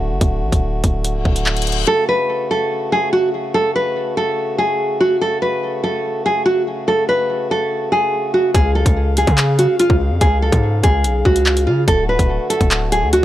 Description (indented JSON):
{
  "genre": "hip hop, drill",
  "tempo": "144 BPM",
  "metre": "4/4",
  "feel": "half-time",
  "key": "F# harmonic minor",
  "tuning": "A4 = 440 Hz",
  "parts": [
    { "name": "pedal harmonium", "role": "sustained chords", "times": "0.0-13.2 s", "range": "C#3 to E#5", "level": "-25 LUFS", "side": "left 1 dB", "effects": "none" },
    { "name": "hard-hitting 808-style bass", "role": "bass", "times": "0.0-1.9, 8.5-13.2 s", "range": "C#1 to C#3", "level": "-18 LUFS", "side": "equal", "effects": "none" },
    { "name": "drill drum kit", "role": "drums", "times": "0.2-1.8, 8.5-13.2 s", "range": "handclaps, hi-hat, kick drum", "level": "-17 LUFS", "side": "equal", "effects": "none" },
    { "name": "reverse cymbal", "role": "sound effects", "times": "1.2-1.9 s", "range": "none", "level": "-25 LUFS", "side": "left 10 dB", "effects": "none" },
    { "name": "nylon-string guitar", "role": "melody", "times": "1.9-13.2 s", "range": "E#4 to B4", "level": "-16 LUFS", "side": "equal", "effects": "low-pass filter, tape echo" }
  ],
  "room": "little or no reverb",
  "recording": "dry, gritty hardware recording",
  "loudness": "-14 LUFS",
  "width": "side -13 dB against mid",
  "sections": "0.0-1.9 A section; 1.9-13.2 B section",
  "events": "break 0.0-1.9; reverse cymbal 1.2-1.9",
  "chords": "0.0 D; 1.9 F#m; 8.5 C#; 11.9 D"
}